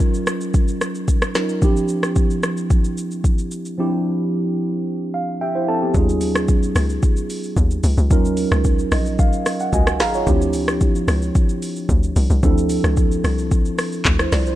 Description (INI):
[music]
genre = amapiano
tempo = 111 BPM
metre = 4/4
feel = straight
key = unclear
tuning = A4 = 442 Hz
[part]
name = mellow tine electric piano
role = accompaniment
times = 0.0-14.6 s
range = F3 to Bb5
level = -21 LUFS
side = right 1 dB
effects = lush chorus
[part]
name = afro-pop drum kit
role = drums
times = 0.0-14.6 s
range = handclaps, hi-hat, kick drum, rim click, shaker, snare drum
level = -19 LUFS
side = equal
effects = overdrive
[part]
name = tight log drum bass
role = bass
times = 5.9-14.6 s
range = Ab1 to Eb2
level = -20 LUFS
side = equal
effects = none
[sound]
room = little or no reverb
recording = dark, warm production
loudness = -16 LUFS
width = side -14 dB against mid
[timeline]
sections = 0.0-5.9 A section; 5.9-14.6 B section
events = tine electric piano fill 4.9-5.9, 8.6-10.3; drop 5.9-14.6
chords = 0.0 Ebm11; 1.6 Dm11; 5.9 Ebm11; 10.3 Dm11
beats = 0.00 0.54 1.08 | 1.62 2.16 2.70 3.24 | 3.78 4.32 4.86 5.40 | 5.95 6.49 7.03 7.57 | 8.11 8.65 9.19 9.73 | 10.27 10.81 11.35 11.89 | 12.43 12.97 13.51 14.05